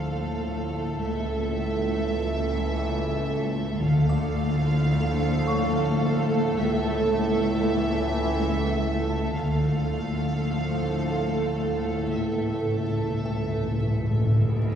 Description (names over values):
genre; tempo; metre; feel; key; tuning
cinematic, suspense film score; 108 BPM; 5/4; straight; D harmonic minor; A4 = 441 Hz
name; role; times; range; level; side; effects
clear studio violin section; melody; 0.0-14.7 s; E5 to F5; -35 LUFS; left 1 dB; none
rich studio violin section; second line; 0.0-14.7 s; A4; -36 LUFS; right 2 dB; none
rich studio viola section; accompaniment; 0.0-14.7 s; A3; -31 LUFS; equal; none
clear trombone section; sustained chords; 0.0-14.6 s; A2 to F3; -33 LUFS; right 1 dB; none
dark French horn section; sustained chords; 0.0-14.6 s; A3 to A4; -33 LUFS; right 2 dB; none
dark studio double bass section; bass; 0.0-14.7 s; C#2 to D2; -30 LUFS; right 1 dB; none
warm studio cello section; bass; 0.0-14.7 s; C#2 to D2; -29 LUFS; equal; none
timpani; percussion; 3.8-4.6, 12.1-14.8 s; A2 to D3; -25 LUFS; equal; none
music box; texture; 4.1-14.8 s; C#5 to D6; -38 LUFS; left 2 dB; none
room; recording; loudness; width
wet scoring stage reverb, RT60 2.1 s; heard from further back in the room, vinyl crackle, studio ambience; -23 LUFS; side -8 dB against mid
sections
0.0-14.8 A section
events
timpani fill 12.1-14.8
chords
0.0 Dm; 1.0 A/C#; 3.8 Dm; 6.6 A/C#; 9.4 Dm; 12.1 A/C#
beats
0.47 | 1.03 1.58 2.14 2.70 3.25 | 3.81 4.36 4.92 5.47 6.03 | 6.58 7.14 7.70 8.25 8.81 | 9.36 9.92 10.47 11.03 11.59 | 12.14 12.70 13.25 13.81 14.36